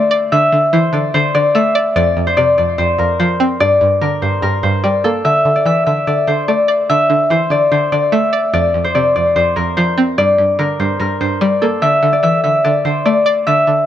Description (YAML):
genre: hip hop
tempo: 146 BPM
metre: 4/4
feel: half-time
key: unclear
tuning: A4 = 440 Hz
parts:
  - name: concert harp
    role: melody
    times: 0.0-13.9 s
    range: A4 to E5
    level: -13 LUFS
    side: left 2 dB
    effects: low-pass filter, digital delay
  - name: string-like resonator pluck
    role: accompaniment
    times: 0.0-13.9 s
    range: F2 to D5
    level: -17 LUFS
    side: right 1 dB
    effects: chorus, phaser, low-pass filter
room: light reverb, small room ambience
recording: none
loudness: -12 LUFS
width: side -11 dB against mid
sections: 0.0-5.2 A section; 5.2-11.8 B section; 11.8-13.9 C section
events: none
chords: 0.0 Dsus2; 2.0 F5; 3.6 Gm; 5.2 Dsus2; 8.5 F5; 10.2 Gm; 11.8 Dsus2